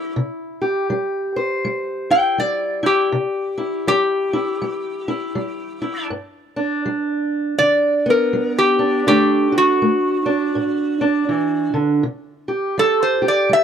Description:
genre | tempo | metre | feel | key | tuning
acoustic country blues, solo or duo | 81 BPM | 4/4 | swing 61% on 8ths | unclear | A4 = 439 Hz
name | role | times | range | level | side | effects
metal-body resonator slide guitar | melody | 0.0-13.6 s | F#4 to G5 | -17 LUFS | left 1 dB | none
fingerpicked steel-string acoustic guitar | accompaniment | 0.0-13.6 s | G2 to C5 | -20 LUFS | right 2 dB | none
room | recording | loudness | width
small room ambience | dry, close 1970s-style studio recording | -17 LUFS | side -8 dB against mid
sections
0.0-13.6 A section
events
none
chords
0.0 C; 6.1 G; 9.1 D; 12.0 C5

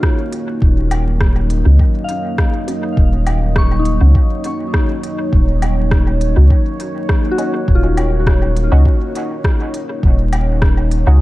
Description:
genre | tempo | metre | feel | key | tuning
ambient dub | 102 BPM | 4/4 | swing 53% on 16ths | Eb minor | A4 = 440 Hz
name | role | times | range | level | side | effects
deep dark ambient pad | sustained chords | 0.0-11.2 s | Gb3 to F5 | -22 LUFS | equal | chorus, built-in reverb
soft synth bell | arpeggios | 0.0-11.2 s | Eb4 to Db6 | -26 LUFS | left 3 dB | chorus, tape echo
electronic kick drum | drums | 0.0-10.7 s | none | -14 LUFS | equal | none
organic electronic drum kit | drums | 0.0-11.0 s | hi-hat, rim click, woodblock | -26 LUFS | equal | dub echo
soft dub sub bass | bass | 0.6-11.2 s | Eb1 to Db2 | -13 LUFS | equal | none
filtered dub chord stab | stabs | 1.7-11.2 s | Db4 to Gb4 | -28 LUFS | right 2 dB | analog chorus, dub echo
room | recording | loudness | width
little or no reverb | dark, warm production, vinyl crackle | -12 LUFS | side -17 dB against mid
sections
0.0-11.2 A section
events
none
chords
0.0 Ebm7

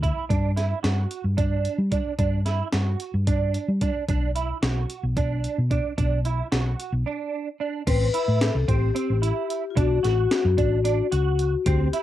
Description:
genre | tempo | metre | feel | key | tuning
progressive instrumental, band music in an uneven meter | 222 BPM (eighths) | 7/8 | straight | unclear | A4 = 440 Hz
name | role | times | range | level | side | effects
clean electric guitar | arpeggios | 0.0-12.0 s | C4 to F#4 | -29 LUFS | right 7 dB | ensemble chorus
hollow-body short-scale fingered electric bass | bass | 0.0-11.9 s | A1 to G3 | -23 LUFS | equal | none
breakbeat sampler-style drum kit | drums | 0.0-12.0 s | crash cymbal, hi-hat, kick drum, snare drum | -27 LUFS | equal | cassette tape
vibraphone with medium hard mallets | second line | 7.9-12.0 s | F4 to B4 | -25 LUFS | left 8 dB | plate reverb
room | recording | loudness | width
moderate booth ambience, RT60 0.2 s | home recording on cassette | -21 LUFS | side -13 dB against mid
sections
0.0-7.9 A section; 7.9-12.0 B section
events
break 7.1-7.9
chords
0.3 G5; 4.1 Bm; 7.9 Am7; 9.8 Bm7 (rootless)

